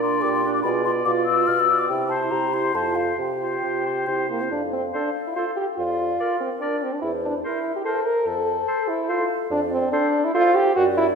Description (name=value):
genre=quick classical-period movement for wind quintet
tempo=144 BPM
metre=3/4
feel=rubato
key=F major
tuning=A4 = 440 Hz
part: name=mellow hollow concert flute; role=melody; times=0.0-11.2 s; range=A4 to F6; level=-26 LUFS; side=left 7 dB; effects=none
part: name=clear oboe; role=second line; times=0.0-10.5 s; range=C5 to D5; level=-30 LUFS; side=left 2 dB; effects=none
part: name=clear French horn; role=accompaniment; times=0.0-11.1 s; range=Bb3 to Bb4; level=-23 LUFS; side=right 1 dB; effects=none
part: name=warm clarinet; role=accompaniment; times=0.0-10.5 s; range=D4 to Bb4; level=-30 LUFS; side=right 7 dB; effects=none
part: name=mellow bassoon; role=bass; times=0.0-11.1 s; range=E2 to C3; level=-28 LUFS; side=right 2 dB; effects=none
room=wet scoring stage reverb, RT60 1.5 s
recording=minimal, uncompressed stereo recording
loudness=-20 LUFS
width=side -5 dB against mid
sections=0.0-4.5 A section; 4.5-11.2 B section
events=none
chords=0.0 Gm/Bb; 0.6 Bdim7; 1.9 C; 2.7 F; 3.2 Csus4; 4.1 C; 4.5 F; 5.8 Bbadd9/F; 7.0 C7/E; 8.3 F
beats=0.23 | 0.65 1.06 1.48 | 1.90 2.32 2.75 | 3.19 3.64 4.08 | 4.53 4.96 5.38 | 5.79 6.21 6.62 | 7.04 7.45 7.86 | 8.27 8.68 9.10 | 9.51 9.93 10.35 | 10.78